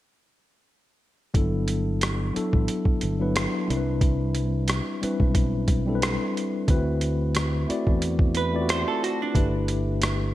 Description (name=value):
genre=R&B, neo-soul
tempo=90 BPM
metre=4/4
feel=swing 55% on 16ths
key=G major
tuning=A4 = 440 Hz
part: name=mellow tine electric piano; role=accompaniment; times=1.3-10.3 s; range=F#3 to D5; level=-27 LUFS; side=left 2 dB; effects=fast stereo tremolo
part: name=boom bap sampler-style drum kit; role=drums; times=1.3-10.2 s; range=hi-hat, kick drum, rim click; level=-25 LUFS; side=equal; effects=gated reverb
part: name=fretless electric bass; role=bass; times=1.4-10.3 s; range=G1 to E2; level=-26 LUFS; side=equal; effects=ensemble chorus
part: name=archtop guitar, miked and amplified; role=second line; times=8.4-9.5 s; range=D4 to C5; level=-29 LUFS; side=right 5 dB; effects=wide subtle chorus
room=light reverb, digital ambience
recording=bright 1980s-style digital production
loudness=-22 LUFS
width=side -15 dB against mid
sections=1.3-10.3 A section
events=none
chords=1.3 Gmaj13; 3.7 Cmaj9; 6.7 D13; 9.3 G69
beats=| 1.35 2.01 2.68 3.35 | 4.01 4.68 5.35 6.01 | 6.68 7.35 8.01 8.68 | 9.35 10.01